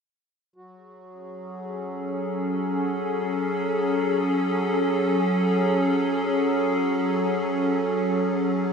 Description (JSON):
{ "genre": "ambient", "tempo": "free time", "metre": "none", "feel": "none", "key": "F# minor", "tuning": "A4 = 439 Hz", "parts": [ { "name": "evolving wavetable pad", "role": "sustained chords", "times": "1.3-8.7 s", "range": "F#3 to A4", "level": "-22 LUFS", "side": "equal", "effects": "chorus, built-in reverb, shimmer reverb" }, { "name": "hand-pumped harmonium", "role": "drone", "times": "0.6-8.7 s", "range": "F#3 to F#4", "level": "-38 LUFS", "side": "left 1 dB", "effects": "none" } ], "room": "wet cathedral reverb, RT60 5.1 s", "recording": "none", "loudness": "-22 LUFS", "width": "side -6 dB against mid", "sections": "0.5-8.7 A section", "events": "fade-in on harmonium 0.5-8.7", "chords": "0.5 F#madd9" }